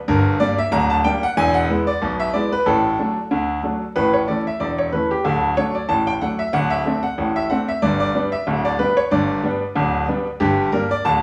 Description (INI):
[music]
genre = ragtime piano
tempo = 93 BPM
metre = 2/4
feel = swing 55% on 16ths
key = D major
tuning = A4 = 440 Hz
[part]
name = clear grand piano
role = solo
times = 0.1-11.2 s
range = D1 to Bb5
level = -20 LUFS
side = equal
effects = none
[sound]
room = wet large studio reverb, RT60 0.8 s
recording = band playing live in one room, vinyl crackle, small room ambience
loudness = -20 LUFS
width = mono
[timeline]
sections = 0.0-11.2 A section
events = none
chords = 0.1 Gm; 1.4 E; 2.7 D/A; 4.0 A; 5.2 D; 6.5 D5; 7.8 G; 10.4 Gm